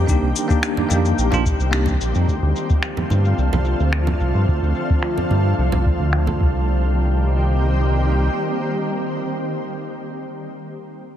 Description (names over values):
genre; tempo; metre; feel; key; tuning
sunset chillout; 109 BPM; 4/4; straight; C dorian; A4 = 440 Hz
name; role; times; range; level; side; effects
shimmering ambient pad; sustained chords; 0.0-9.6 s; D3 to G4; -23 LUFS; equal; chorus, built-in reverb, vintage 12-bit sampler grit
round analog bass; bass; 0.0-8.3 s; Bb1 to G2; -18 LUFS; equal; none
bell-like tine electric piano; accompaniment; 0.1-1.9 s; Bb3 to G4; -23 LUFS; equal; fast stereo tremolo, auto-pan, tape echo
cabasa and finger snaps; drums; 0.1-6.4 s; none; -27 LUFS; left 2 dB; low-pass filter on hats, low-pass filter on perc, low-pass filter on snare, low-pass filter on room
electronic kick drum; drums; 0.1-6.5 s; none; -20 LUFS; equal; none
congas; percussion; 0.8-6.4 s; none; -27 LUFS; right 4 dB; none
room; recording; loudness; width
light reverb, small room reverb; heavily compressed radio sound; -17 LUFS; side -10 dB against mid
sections
0.0-6.7 A section; 6.7-8.9 B section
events
filter sweep on drum 0.0-6.7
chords
0.0 Cm7; 2.3 Dm7; 6.4 Cm7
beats
| 0.07 0.62 1.18 1.73 | 2.28 2.83 3.38 3.93 | 4.48 5.03 5.58 6.13 | 6.68 7.23 7.78 8.33